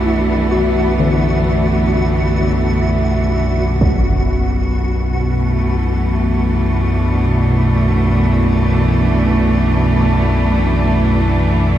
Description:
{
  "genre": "dark ambient drone",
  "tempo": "free time",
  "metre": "none",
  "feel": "none",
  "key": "unclear",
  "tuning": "A4 = 441 Hz",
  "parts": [
    { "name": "dark studio cello section", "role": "sustained chords", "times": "0.0-11.8 s", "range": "B2 to D4", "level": "-16 LUFS", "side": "right 1 dB", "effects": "shimmer reverb" },
    { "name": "deep rumbling drone", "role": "drone", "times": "0.0-11.8 s", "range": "B1 to F#2", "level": "-16 LUFS", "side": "equal", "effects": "built-in reverb" },
    { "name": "flickering grainy texture", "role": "texture", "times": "0.0-11.8 s", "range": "F#4", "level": "-26 LUFS", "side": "left 1 dB", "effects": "built-in reverb, shimmer reverb" },
    { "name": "gamelan-type bossed gongs", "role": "arpeggios", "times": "0.1-6.6 s", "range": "D3 to F#4", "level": "-22 LUFS", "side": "left 4 dB", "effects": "diffuse ambient delay, shimmer reverb" },
    { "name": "impact", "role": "percussion", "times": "3.8-4.0 s", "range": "none", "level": "-20 LUFS", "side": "right 1 dB", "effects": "low-pass filter on sfx" }
  ],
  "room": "moderate huge ambient reverb, RT60 8.1 s",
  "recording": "none",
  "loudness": "-13 LUFS",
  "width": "side -12 dB against mid",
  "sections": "0.0-11.8 A section",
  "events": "fade-out on synth texture 0.0-11.8",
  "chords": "0.0 Gmaj13/B (rootless)"
}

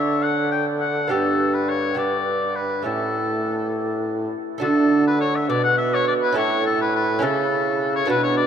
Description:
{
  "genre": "classical, renaissance-style consort dance",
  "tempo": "69 BPM (dotted quarters)",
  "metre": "6/8",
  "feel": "straight",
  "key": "A mixolydian",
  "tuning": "A4 = 439 Hz",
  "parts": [
    { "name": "clear oboe", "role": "melody", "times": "0.0-8.5 s", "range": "A4 to G5", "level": "-23 LUFS", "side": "left 4 dB", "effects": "none" },
    { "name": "lute", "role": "accompaniment", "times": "0.0-8.5 s", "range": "G2 to A4", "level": "-24 LUFS", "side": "right 3 dB", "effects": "none" },
    { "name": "mellow bassoon", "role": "bass", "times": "0.0-8.5 s", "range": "G2 to D3", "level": "-23 LUFS", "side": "right 2 dB", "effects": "none" }
  ],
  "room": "wet cathedral reverb, RT60 7.1 s",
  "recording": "in a vast, echoing space",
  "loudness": "-19 LUFS",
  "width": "side -8 dB against mid",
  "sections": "0.0-4.6 A section; 4.6-8.5 A section",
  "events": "none",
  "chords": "0.0 D5; 1.1 G; 2.9 A; 4.6 D; 6.4 A"
}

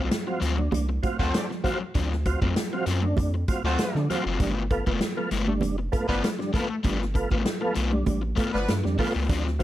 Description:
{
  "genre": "funk",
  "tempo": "98 BPM",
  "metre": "4/4",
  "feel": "straight",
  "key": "unclear",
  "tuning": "A4 = 440 Hz",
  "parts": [
    { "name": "crunchy overdriven guitar", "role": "accompaniment", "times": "0.0-9.6 s", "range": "F#3 to E#4", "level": "-30 LUFS", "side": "left 5 dB", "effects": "none" },
    { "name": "tonewheel organ", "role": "stabs", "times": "0.0-9.6 s", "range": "G2 to E#4", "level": "-30 LUFS", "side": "right 2 dB", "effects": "chorus vibrato, slow rotary speaker" },
    { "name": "round analog bass", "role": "bass", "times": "0.0-9.6 s", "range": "F1 to D3", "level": "-27 LUFS", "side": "equal", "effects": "none" },
    { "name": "swinging big-band drum kit", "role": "drums", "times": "0.1-9.6 s", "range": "hi-hat, kick drum, snare drum", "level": "-28 LUFS", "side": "equal", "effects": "none" },
    { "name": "congas", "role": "percussion", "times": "0.1-9.4 s", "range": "none", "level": "-34 LUFS", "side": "right 5 dB", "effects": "none" },
    { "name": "clear horn section", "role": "second line", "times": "1.2-8.7 s", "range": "F3 to C5", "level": "-30 LUFS", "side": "equal", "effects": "none" }
  ],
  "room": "light reverb, small room ambience",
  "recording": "none",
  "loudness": "-23 LUFS",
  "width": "side -14 dB against mid",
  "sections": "0.0-9.6 A section",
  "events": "none",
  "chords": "0.0 D7#9; 4.4 G9"
}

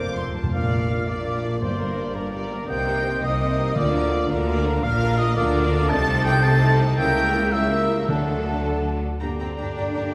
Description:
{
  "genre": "classical",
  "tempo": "111 BPM (dotted quarters)",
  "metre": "6/8",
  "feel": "straight",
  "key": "Bb major, G minor from 4.8 s",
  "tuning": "A4 = 439 Hz",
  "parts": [
    { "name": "rich symphonic violin section", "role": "melody", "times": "0.0-10.0 s", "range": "A4 to D6", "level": "-36 LUFS", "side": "equal", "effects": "none" },
    { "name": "clear oboe", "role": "second line", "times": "0.0-10.1 s", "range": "C5 to G5", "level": "-37 LUFS", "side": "equal", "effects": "none" },
    { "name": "mellow clarinet", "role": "second line", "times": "0.0-10.1 s", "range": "G4 to A5", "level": "-33 LUFS", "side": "equal", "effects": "none" },
    { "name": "silver concert flute", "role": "second line", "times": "0.0-10.1 s", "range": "D5 to A6", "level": "-30 LUFS", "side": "equal", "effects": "none" },
    { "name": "dark bassoon", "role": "accompaniment", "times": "0.0-10.1 s", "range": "D3 to A#3", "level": "-33 LUFS", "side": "equal", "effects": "none" },
    { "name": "rich symphonic viola section", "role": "accompaniment", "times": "0.0-10.0 s", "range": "F#3 to C5", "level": "-34 LUFS", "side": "equal", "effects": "none" },
    { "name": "rich symphonic cello section", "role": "bass", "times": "0.0-10.1 s", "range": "F2 to D4", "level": "-29 LUFS", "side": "equal", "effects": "none" },
    { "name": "rich symphonic double bass section", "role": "bass", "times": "0.0-10.0 s", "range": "F1 to G2", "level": "-28 LUFS", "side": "equal", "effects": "none" },
    { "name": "timpani", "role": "percussion", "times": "0.0-4.3, 8.1-8.6 s", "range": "F2 to D3", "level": "-32 LUFS", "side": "equal", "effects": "none" },
    { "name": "clear symphonic violin section", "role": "second line", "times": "0.5-10.0 s", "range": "A4 to A5", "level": "-36 LUFS", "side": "equal", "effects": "none" },
    { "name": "mellow French horn section", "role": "sustained chords", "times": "0.5-10.1 s", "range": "A3 to G4", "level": "-38 LUFS", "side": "equal", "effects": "none" }
  ],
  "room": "wet scoring stage reverb, RT60 2.0 s",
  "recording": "heard from further back in the room",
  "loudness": "-22 LUFS",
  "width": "mono",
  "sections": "0.5-9.2 A section",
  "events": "timpani fill 0.0-0.5",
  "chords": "0.0 F; 0.5 Bb; 1.6 Gm; 2.7 Cm7; 3.8 Bb/D; 4.8 Bb; 5.9 Adim/C; 7.0 C#dim7; 8.1 D; 9.2 Gm"
}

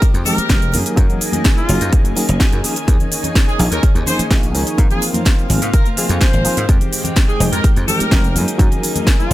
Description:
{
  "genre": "filtered disco house",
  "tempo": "126 BPM",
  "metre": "4/4",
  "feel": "straight",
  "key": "unclear",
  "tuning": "A4 = 440 Hz",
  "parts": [
    { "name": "warm horn section", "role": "melody", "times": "0.0-9.3 s", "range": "F4 to C5", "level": "-24 LUFS", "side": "equal", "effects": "sidechain pumping, ping-pong delay" },
    { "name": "string machine, full ensemble", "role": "sustained chords", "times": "0.0-9.3 s", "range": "Ab3 to Ab5", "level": "-26 LUFS", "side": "left 1 dB", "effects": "ensemble chorus, sidechain pumping" },
    { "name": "direct-recorded clean electric guitar", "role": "riff", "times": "0.0-9.3 s", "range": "Eb3 to Ab4", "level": "-27 LUFS", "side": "left 1 dB", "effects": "vintage 12-bit sampler grit, sidechain pumping" },
    { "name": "dry thumbed slap bass", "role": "bass", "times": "0.0-9.3 s", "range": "F1 to Ab2", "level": "-19 LUFS", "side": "equal", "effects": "sidechain pumping" },
    { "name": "electronic kick drum", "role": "drums", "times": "0.0-9.2 s", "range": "none", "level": "-14 LUFS", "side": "equal", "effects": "none" },
    { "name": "house drum kit", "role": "drums", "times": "0.0-9.3 s", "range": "cabasa, hi-hat, snare drum", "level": "-21 LUFS", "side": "equal", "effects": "sidechain pumping on hats, sidechain pumping on cymbals, sidechain pumping on perc" },
    { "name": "tube shaker and congas", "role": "percussion", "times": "0.0-9.3 s", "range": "none", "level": "-26 LUFS", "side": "left 1 dB", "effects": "sidechain pumping on perc" },
    { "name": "reed electric piano", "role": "accompaniment", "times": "0.3-9.3 s", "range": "F3 to Bb4", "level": "-23 LUFS", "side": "equal", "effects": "overdrive, fast tremolo, phaser, sidechain pumping" }
  ],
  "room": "digital ambience",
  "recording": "none",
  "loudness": "-13 LUFS",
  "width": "side -15 dB against mid",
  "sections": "0.0-9.3 A section",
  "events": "none",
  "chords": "0.0 Fm9; 0.7 Gb69; 2.6 Eb7sus4; 4.8 Ab69; 6.7 Fm9; 8.4 Gb69"
}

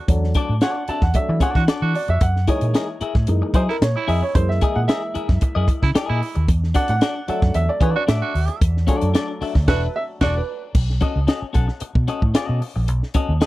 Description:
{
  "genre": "funk",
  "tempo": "112 BPM",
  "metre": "4/4",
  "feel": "straight",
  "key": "unclear",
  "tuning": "A4 = 438 Hz",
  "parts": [
    { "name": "raspy tenor saxophone", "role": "second line", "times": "0.0-10.3 s", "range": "E4 to F#4", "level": "-26 LUFS", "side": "right 7 dB", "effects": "none" },
    { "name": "warm upright piano", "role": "stabs", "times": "0.0-10.7 s", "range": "E3 to A5", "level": "-25 LUFS", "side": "right 1 dB", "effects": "none" },
    { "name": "vintage muted fingered electric bass", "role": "bass", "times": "0.1-13.4 s", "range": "E1 to F#3", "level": "-20 LUFS", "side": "equal", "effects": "none" },
    { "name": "compact cocktail drum kit", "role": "drums", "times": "0.1-13.5 s", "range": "crash cymbal, hi-hat, kick drum, snare drum", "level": "-19 LUFS", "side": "equal", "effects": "none" },
    { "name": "clean electric guitar", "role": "accompaniment", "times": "0.4-13.5 s", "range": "C#4 to F#5", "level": "-27 LUFS", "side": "left 6 dB", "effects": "spring reverb" }
  ],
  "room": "little or no reverb",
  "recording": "dry, close 1970s-style studio recording",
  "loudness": "-17 LUFS",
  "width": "side -17 dB against mid",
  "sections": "0.0-10.7 A section; 10.7-13.5 B section",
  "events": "upright piano solo 0.0-10.7; band accent 9.7-10.7",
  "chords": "0.0 E9sus4; 2.2 F#13; 6.5 E9sus4; 10.7 B9"
}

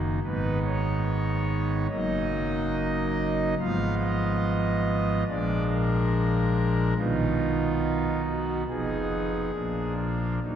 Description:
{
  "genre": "classical, chorale-style piece for pipe organ",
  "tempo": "71 BPM",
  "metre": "4/4",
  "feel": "rubato",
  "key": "unclear",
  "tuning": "A4 = 440 Hz",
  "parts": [
    { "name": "pipe organ, foundations", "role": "solo", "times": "0.0-10.6 s", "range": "Eb1 to F5", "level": "-24 LUFS", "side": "equal", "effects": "none" }
  ],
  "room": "wet church reverb, RT60 3.0 s",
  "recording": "none",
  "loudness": "-24 LUFS",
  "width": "side -9 dB against mid",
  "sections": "0.0-10.6 A section",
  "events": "none",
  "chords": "0.2 Abm; 1.9 Ebm/Gb; 3.6 Fdim/Ab; 5.3 Bb7; 7.0 B; 8.7 Fm7b5; 9.5 Bb"
}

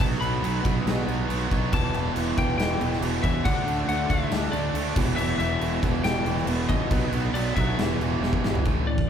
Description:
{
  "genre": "hard rock",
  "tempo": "139 BPM",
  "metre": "4/4",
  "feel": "straight",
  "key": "unclear",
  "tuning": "A4 = 439 Hz",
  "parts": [
    { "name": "lightly driven lead guitar", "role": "melody", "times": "0.0-9.1 s", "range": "D5 to B5", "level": "-30 LUFS", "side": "left 3 dB", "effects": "none" },
    { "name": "cranked stack guitar", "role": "riff", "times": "0.0-9.1 s", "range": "E2 to D4", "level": "-32 LUFS", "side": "left 7 dB", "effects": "overdrive" },
    { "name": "sludgy distorted guitar", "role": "riff", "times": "0.0-8.6 s", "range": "E2 to D4", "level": "-32 LUFS", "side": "equal", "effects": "overdrive" },
    { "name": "tight distorted guitar", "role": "riff", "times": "0.0-9.1 s", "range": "E2 to D4", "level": "-31 LUFS", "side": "right 9 dB", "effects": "distortion" },
    { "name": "fuzz fingered electric bass", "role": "bass", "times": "0.0-8.9 s", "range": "E1 to E2", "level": "-29 LUFS", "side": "equal", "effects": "overdrive" },
    { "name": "big rock drum kit", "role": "drums", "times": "0.0-9.1 s", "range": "crash cymbal, kick drum, snare drum, toms", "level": "-27 LUFS", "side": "equal", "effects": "none" },
    { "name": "overdriven tonewheel organ", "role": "sustained chords", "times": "1.7-8.6 s", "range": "E3 to E5", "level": "-38 LUFS", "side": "right 1 dB", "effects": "none" }
  ],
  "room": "light reverb",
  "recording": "band playing live in one room",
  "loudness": "-22 LUFS",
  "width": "side -8 dB against mid",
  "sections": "0.0-8.6 A section",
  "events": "drum fill 8.2-8.6",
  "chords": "0.0 B5; 1.7 Em; 3.5 D; 5.0 Em; 6.9 B5; 7.8 Em"
}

